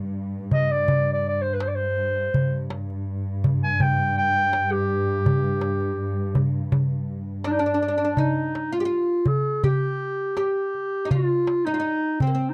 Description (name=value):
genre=Arabic maqam ensemble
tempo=82 BPM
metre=4/4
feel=straight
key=G maqam hijaz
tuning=A4 = 440 Hz
part: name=muted symphonic cello section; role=drone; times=0.0-8.3 s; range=G2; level=-30 LUFS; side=equal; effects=none
part: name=warm clarinet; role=melody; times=0.5-12.5 s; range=C4 to Ab5+27c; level=-26 LUFS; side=equal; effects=none
part: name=darbuka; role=percussion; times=0.5-12.5 s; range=none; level=-26 LUFS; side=equal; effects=none
part: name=oud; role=second line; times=7.4-12.5 s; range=Bb3 to G4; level=-30 LUFS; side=equal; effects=none
room=light reverb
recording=dry, close 1970s-style studio recording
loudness=-24 LUFS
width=mono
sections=0.0-8.2 A section; 8.2-12.5 B section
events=none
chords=none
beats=0.15 0.89 1.62 | 2.35 3.08 3.81 4.54 | 5.27 6.00 6.73 7.46 | 8.19 8.92 9.65 10.38 | 11.11 11.84